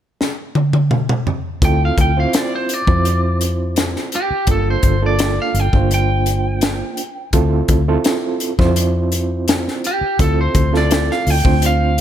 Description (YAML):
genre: straight-eighth soul blues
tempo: 84 BPM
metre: 4/4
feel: straight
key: D minor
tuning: A4 = 440 Hz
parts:
  - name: tight funk drum kit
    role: drums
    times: 0.2-12.0 s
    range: hi-hat, kick drum, snare drum, toms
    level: -18 LUFS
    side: left 1 dB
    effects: none
  - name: lightly driven lead guitar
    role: melody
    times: 1.6-12.0 s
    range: G4 to G5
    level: -21 LUFS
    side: right 1 dB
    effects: none
  - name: overdriven reed electric piano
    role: accompaniment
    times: 1.6-12.0 s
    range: Bb3 to C5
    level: -21 LUFS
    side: right 4 dB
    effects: fast tremolo
  - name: vintage muted fingered electric bass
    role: bass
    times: 1.6-12.0 s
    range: G1 to F2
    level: -17 LUFS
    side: left 1 dB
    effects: none
room: light reverb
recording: none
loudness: -14 LUFS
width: side -10 dB against mid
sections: 0.0-1.6 A section; 1.6-12.0 B section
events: drum fill 0.2-1.6; lead electric guitar solo 1.6-12.0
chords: 0.0 N.C.; 1.6 Dm9; 4.5 Gm9; 7.3 Dm9